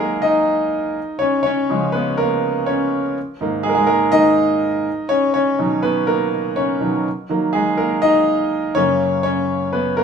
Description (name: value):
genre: pop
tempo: 123 BPM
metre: 4/4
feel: straight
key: Eb minor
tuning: A4 = 440 Hz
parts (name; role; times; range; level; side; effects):
- bright grand piano; solo; 0.0-10.0 s; Gb2 to Eb5; -16 LUFS; equal; none
room: wet studio reverb, RT60 0.8 s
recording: band playing live in one room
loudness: -16 LUFS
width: side -6 dB against mid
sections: 0.0-10.0 A section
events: grand piano solo 0.0-10.0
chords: 0.0 Ebm; 1.0 Db; 3.2 Absus2; 4.9 B; 7.1 Ebm; 8.8 Gb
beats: 0.24 0.72 | 1.21 1.70 2.19 2.67 | 3.16 3.65 4.13 4.62 | 5.11 5.60 6.08 6.57 | 7.06 7.54 8.03 8.52 | 9.01 9.49 9.98